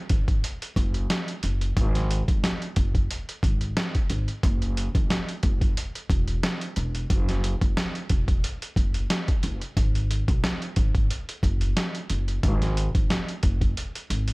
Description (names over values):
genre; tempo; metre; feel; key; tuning
hip hop, boom-bap hip-hop; 90 BPM; 4/4; swing 55% on 16ths; unclear; A4 = 438 Hz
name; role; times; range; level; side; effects
upright bass; bass; 0.1-14.3 s; E1 to B1; -26 LUFS; equal; none
trip hop sampler-style drum kit; drums; 0.1-14.3 s; hi-hat, kick drum, snare drum; -24 LUFS; equal; none
room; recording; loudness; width
little or no reverb; none; -23 LUFS; side -26 dB against mid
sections
0.0-14.3 A section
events
break 13.8-14.3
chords
none